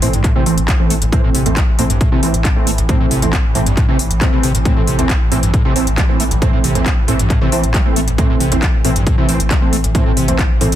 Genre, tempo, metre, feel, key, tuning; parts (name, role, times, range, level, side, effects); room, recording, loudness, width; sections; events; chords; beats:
driving peak-time techno; 136 BPM; 4/4; straight; A minor; A4 = 440 Hz
overdriven acid bass; riff; 0.0-10.8 s; A1 to A3; -20 LUFS; equal; distortion, analog chorus, sidechain pumping, tape echo
rave stab; stabs; 0.0-10.7 s; E3 to C4; -19 LUFS; right 2 dB; chorus, built-in reverb, sidechain pumping, tape echo
saturated sub bass; bass; 0.0-10.8 s; A1; -19 LUFS; equal; overdrive, sidechain pumping, low-pass filter
swarming drone; drone; 0.0-10.8 s; A2 to E3; -25 LUFS; right 1 dB; built-in reverb, sidechain pumping
techno drum kit; drums; 0.0-10.8 s; handclaps, hi-hat; -21 LUFS; equal; overdrive
electronic kick drum; drums; 0.2-10.5 s; -15 LUFS; equal; overdrive
light reverb; dense, heavily limited modern master; -12 LUFS; side -12 dB against mid
0.0-10.8 A section
0.0 Am
0.24 0.68 | 1.12 1.57 2.01 2.45 | 2.89 3.33 3.77 4.21 | 4.65 5.09 5.54 5.98 | 6.42 6.86 7.30 7.74 | 8.18 8.62 9.07 9.51 | 9.95 10.39